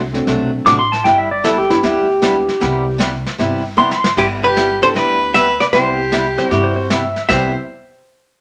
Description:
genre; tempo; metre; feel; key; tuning
country, western swing; 154 BPM; 4/4; swing 66% on 8ths; C major; A4 = 439 Hz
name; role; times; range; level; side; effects
upright bass; bass; 0.0-7.5 s; G1 to G2; -27 LUFS; equal; none
warm upright piano; accompaniment; 0.1-2.5, 4.8-7.5 s; G3 to A4; -25 LUFS; equal; none
vintage brush drum kit; drums; 0.1-7.6 s; brushed snare drum, crash cymbal, hi-hat, kick drum, snare drum; -25 LUFS; equal; none
picked steel-string acoustic guitar; accompaniment; 0.3-7.5 s; C3 to G4; -23 LUFS; equal; none
pedal steel guitar; second line; 0.7-7.5 s; E4 to D6; -18 LUFS; equal; none
archtop guitar, miked and amplified; melody; 4.2-7.5 s; G4 to E5; -18 LUFS; equal; none
rich fiddle; second line; 4.2-7.5 s; E4 to C5; -21 LUFS; equal; none
room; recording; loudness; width
wet studio reverb, RT60 0.7 s; none; -15 LUFS; mono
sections
0.0-4.2 A section; 4.2-7.3 B section; 7.3-8.4 C section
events
pedal steel guitar solo 0.0-4.2; drum fill 3.8-4.2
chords
0.0 D7; 1.1 G6; 2.6 Cmaj7; 4.2 G6; 5.7 Cmaj7

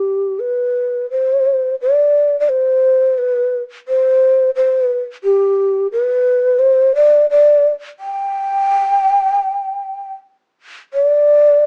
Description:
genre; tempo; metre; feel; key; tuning
japanese traditional, Japanese chamber music; 77-89 BPM; 4/4; rubato; G ryukyu; A4 = 440 Hz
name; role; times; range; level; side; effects
mellow hollow long shakuhachi; solo; 0.0-11.7 s; G4 to G5; -15 LUFS; equal; none
room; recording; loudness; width
light reverb; small speaker sound; -15 LUFS; mono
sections
0.0-10.9 A section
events
none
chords
none

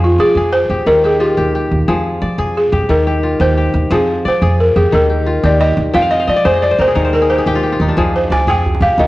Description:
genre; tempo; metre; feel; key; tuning
west african traditional, West African string and xylophone music; 118 BPM (dotted quarters); 12/8; straight; F dorian; A4 = 440 Hz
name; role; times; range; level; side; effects
balafon; melody; 0.0-9.1 s; F4 to Ab5; -14 LUFS; equal; none
kora; arpeggios; 0.0-9.1 s; Eb3 to G5; -17 LUFS; left 2 dB; none
upright bass; bass; 0.0-9.1 s; Eb2 to F3; -16 LUFS; right 1 dB; none
djembe; percussion; 8.0-9.1 s; none; -18 LUFS; right 1 dB; none
room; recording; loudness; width
moderate recital hall reverb, RT60 1.5 s; worn, warbling old tape, cassette tape, warbly pitch drift; -11 LUFS; side -18 dB against mid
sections
0.0-9.1 A section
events
balafon solo 0.0-9.1; kora fill 5.9-8.0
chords
0.0 Fm; 0.9 Eb; 1.9 Fm; 2.9 Eb; 3.9 Fm; 4.9 Eb; 5.9 Fm; 7.0 Eb; 8.0 Fm

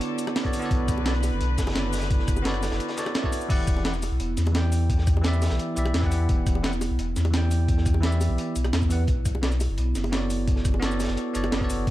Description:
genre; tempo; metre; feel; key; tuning
liquid drum and bass; 172 BPM; 4/4; straight; E dorian; A4 = 441 Hz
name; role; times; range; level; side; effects
bell-like tine electric piano; accompaniment; 0.0-11.9 s; E3 to G5; -32 LUFS; equal; vintage 12-bit sampler grit, ping-pong delay
rich chamber string section; sustained chords; 0.0-3.5 s; D3 to B4; -34 LUFS; left 3 dB; sidechain pumping
vibraphone with soft mallets; arpeggios; 0.0-11.9 s; B3 to E5; -32 LUFS; right 4 dB; ping-pong delay
breakbeat sampler-style drum kit; drums; 0.0-11.9 s; crash cymbal, hi-hat, rim click, shaker, snare drum; -31 LUFS; right 1 dB; studio reverb
crunchy breakbeat drum kit; drums; 0.0-11.9 s; hi-hat, snare drum; -38 LUFS; equal; high-pass filter on hats, studio reverb, high-pass filter on snare, high-pass filter on room
bongos; percussion; 0.3-11.5 s; none; -38 LUFS; left 1 dB; none
electronic kick drum; drums; 0.4-11.9 s; none; -24 LUFS; equal; studio reverb
warm sub bass; bass; 0.7-11.9 s; E1 to E2; -25 LUFS; equal; none
room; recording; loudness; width
studio reverb; dark, warm production; -22 LUFS; side -15 dB against mid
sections
0.0-3.5 A section; 3.5-11.9 A section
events
drop 0.0-3.5, 3.5-11.9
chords
0.0 Bm9; 3.5 Em9; 9.1 Bm9

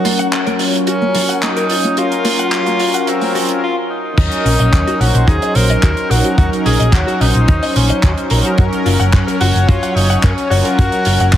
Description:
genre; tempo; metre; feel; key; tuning
nu-disco, nu disco; 109 BPM; 4/4; straight; Eb dorian; A4 = 442 Hz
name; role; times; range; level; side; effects
clear tenor saxophone; melody; 0.0-11.4 s; C4 to Bb4; -19 LUFS; equal; digital delay
warm analog pad; accompaniment; 0.0-11.4 s; Gb3 to Db5; -18 LUFS; left 1 dB; chorus, digital delay
direct-recorded clean electric guitar; riff; 0.0-11.3 s; Db4 to Gb5; -24 LUFS; left 4 dB; ensemble chorus, low-pass filter
damped 70s drum kit; drums; 0.1-11.4 s; crash cymbal, handclaps, hi-hat; -21 LUFS; right 2 dB; none
congas and maracas; percussion; 0.1-3.6 s; none; -24 LUFS; right 1 dB; none
hollow-body short-scale picked electric bass; bass; 4.2-11.4 s; Gb1 to Gb2; -14 LUFS; equal; none
kick drum; drums; 4.2-11.4 s; none; -12 LUFS; equal; none
room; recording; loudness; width
moderate plate reverb, RT60 1.8 s, small room reverb; heavily compressed radio sound, high-pass filter; -12 LUFS; side -11 dB against mid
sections
0.0-4.2 A section; 4.2-11.4 B section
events
build-up 0.0-4.2; filter sweep on analog synth pad 0.0-4.2; filter sweep on tenor saxophone 0.0-4.2; break 3.6-4.2; drop 4.2-11.4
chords
0.0 Gbmaj7; 4.2 Ebm7; 8.6 Gbmaj7

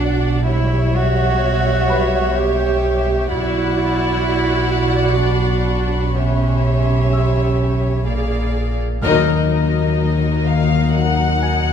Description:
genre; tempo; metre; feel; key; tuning
cinematic, suspense film score; 63 BPM; 3/4; straight; unclear; A4 = 438 Hz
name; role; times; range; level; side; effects
warm chamber violin section; melody; 0.0-11.7 s; Eb5 to F#5; -25 LUFS; left 5 dB; none
warm chamber violin section; second line; 0.0-11.7 s; Eb4 to D5; -24 LUFS; left 1 dB; none
warm chamber viola section; accompaniment; 0.0-11.7 s; Gb3 to G#4; -24 LUFS; right 2 dB; none
clear chamber double bass section; bass; 0.0-11.7 s; A#1 to Eb2; -21 LUFS; right 2 dB; none
dark chamber cello section; bass; 0.0-11.7 s; Eb2 to G4; -23 LUFS; right 3 dB; none
punchy sub bass; drone; 0.0-11.7 s; A#1 to Eb2; -22 LUFS; equal; none
bright grand piano; texture; 0.0-11.7 s; B4 to F#6; -32 LUFS; left 4 dB; none
warm chamber violin section; texture; 3.3-8.5 s; B5 to F#6; -31 LUFS; left 5 dB; none
marimba with hard mallets; riff; 9.0-11.7 s; Eb3 to Eb4; -18 LUFS; left 5 dB; none
room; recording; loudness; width
wet scoring stage reverb, RT60 1.5 s; lossy compression artefacts; -15 LUFS; side -8 dB against mid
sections
0.0-9.0 A section; 9.0-11.7 B section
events
band accent 9.0-10.0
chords
0.5 C#dim/B; 3.3 Bm; 6.2 C#dim/B; 8.1 A#7; 9.0 Ebm

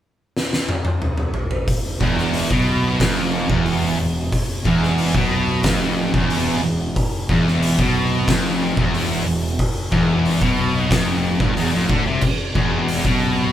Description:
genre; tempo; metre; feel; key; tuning
stoner and doom metal; 91 BPM; 4/4; straight; unclear; A4 = 443 Hz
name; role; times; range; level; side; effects
oversized low-tuned drum kit; drums; 0.4-13.2 s; crash cymbal, hi-hat, kick drum, snare drum, toms; -21 LUFS; equal; none
distorted electric guitar; riff; 2.0-13.5 s; E2 to D3; -23 LUFS; equal; overdrive
thick fuzz guitar; riff; 2.0-13.5 s; E2 to D3; -25 LUFS; left 6 dB; distortion
thick fuzz guitar; riff; 2.0-13.5 s; E2 to D3; -23 LUFS; right 4 dB; distortion
fuzz fingered electric bass; bass; 2.0-13.5 s; E1 to D2; -26 LUFS; equal; overdrive
room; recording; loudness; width
light reverb; band playing live in one room; -17 LUFS; side -11 dB against mid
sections
0.0-1.7 A section; 1.7-13.5 B section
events
drum fill 0.3-1.7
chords
0.0 N.C.; 1.7 E5

